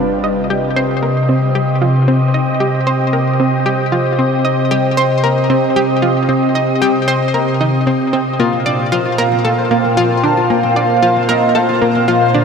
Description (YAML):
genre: ambient, sequencer-driven space music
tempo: 114 BPM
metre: 4/4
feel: straight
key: C minor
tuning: A4 = 444 Hz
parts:
  - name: evolving wavetable pad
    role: sustained chords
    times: 0.0-12.4 s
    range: Bb2 to F5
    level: -14 LUFS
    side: equal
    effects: phaser, built-in reverb, shimmer reverb
  - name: analog pluck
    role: riff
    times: 0.0-12.4 s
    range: Bb3 to Eb5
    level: -17 LUFS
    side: equal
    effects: chorus, shimmer reverb, ping-pong delay
  - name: mellow horn-like synth lead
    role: melody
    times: 8.4-12.3 s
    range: Eb5 to A5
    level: -17 LUFS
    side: right 1 dB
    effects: wide subtle chorus, shimmer reverb, ping-pong delay
  - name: concert harp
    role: arpeggios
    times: 8.4-12.4 s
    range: C4 to C5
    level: -20 LUFS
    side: left 3 dB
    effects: auto-pan, shimmer reverb, ping-pong delay
  - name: pulsing gated texture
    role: texture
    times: 8.4-12.4 s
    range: C5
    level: -26 LUFS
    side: right 6 dB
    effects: chorus, built-in reverb, shimmer reverb
room: wet huge ambient reverb, RT60 8.5 s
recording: none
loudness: -12 LUFS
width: side -6 dB against mid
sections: 0.0-12.4 A section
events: none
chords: 0.0 Cm; 8.4 Bb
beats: 0.50 1.03 1.55 | 2.08 2.61 3.13 3.66 | 4.18 4.71 5.24 5.76 | 6.29 6.82 7.34 7.87 | 8.39 8.92 9.45 9.97 | 10.50 11.03 11.55 12.08